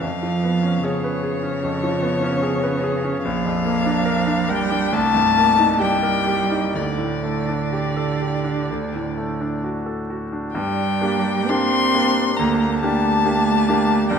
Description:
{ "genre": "classical, slow romantic movement for piano trio", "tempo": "61-76 BPM", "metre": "4/4", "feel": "rubato", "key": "G minor from 3.3 s", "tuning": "A4 = 440 Hz", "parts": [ { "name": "dark violin", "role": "melody", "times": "0.0-14.2 s", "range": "C#5 to C6", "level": "-23 LUFS", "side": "left 7 dB", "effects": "none" }, { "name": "rich cello", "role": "second line", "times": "0.0-14.2 s", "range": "C#3 to C4", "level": "-23 LUFS", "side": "right 6 dB", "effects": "none" }, { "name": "bright concert grand piano", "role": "accompaniment", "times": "0.0-14.2 s", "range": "Bb1 to B4", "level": "-22 LUFS", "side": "equal", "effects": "none" } ], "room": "wet scoring stage reverb, RT60 1.7 s", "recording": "none", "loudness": "-18 LUFS", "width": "side -7 dB against mid", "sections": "0.0-10.5 A section; 10.5-14.2 B section", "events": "none", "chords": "0.0 C#7/E#; 3.3 Bb; 4.9 Cm7; 6.8 Dsus4; 8.7 D; 10.5 Gm", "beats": "| 0.03 0.85 1.65 2.45 | 3.25 4.08 4.94 5.81 | 6.75 7.72 8.68 9.62 | 10.53 11.48 12.37 13.24 | 14.10" }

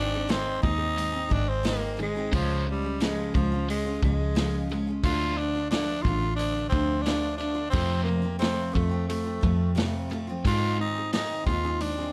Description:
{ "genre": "folk rock and heartland rock", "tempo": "89 BPM", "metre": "4/4", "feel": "straight", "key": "unclear", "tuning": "A4 = 442 Hz", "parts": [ { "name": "breathy tenor saxophone", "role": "melody", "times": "0.0-12.1 s", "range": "F3 to F4", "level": "-32 LUFS", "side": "equal", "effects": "analog delay" }, { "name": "picked steel-string acoustic guitar", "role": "accompaniment", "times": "0.0-12.1 s", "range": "F2 to Ab4", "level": "-37 LUFS", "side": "equal", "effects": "none" }, { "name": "overdriven electric guitar", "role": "riff", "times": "0.0-12.1 s", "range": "Ab2 to F4", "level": "-36 LUFS", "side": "equal", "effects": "spring reverb" }, { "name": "fingered electric bass", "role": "bass", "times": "0.0-12.1 s", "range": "Ab1 to Ab2", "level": "-32 LUFS", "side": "equal", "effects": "none" }, { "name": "vintage drum kit", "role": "drums", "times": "0.3-12.0 s", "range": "hi-hat, kick drum, snare drum", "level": "-31 LUFS", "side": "equal", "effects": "none" } ], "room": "light reverb", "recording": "dark, warm production", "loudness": "-27 LUFS", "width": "mono", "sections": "0.0-12.1 A section", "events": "none", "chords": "0.0 Ab; 2.3 Db; 5.0 Dm; 7.7 F; 10.4 Ab", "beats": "0.30 0.98 1.66 | 2.33 3.01 3.68 4.36 | 5.04 5.71 6.39 7.06 | 7.74 8.42 9.09 9.77 | 10.45 11.12 11.80" }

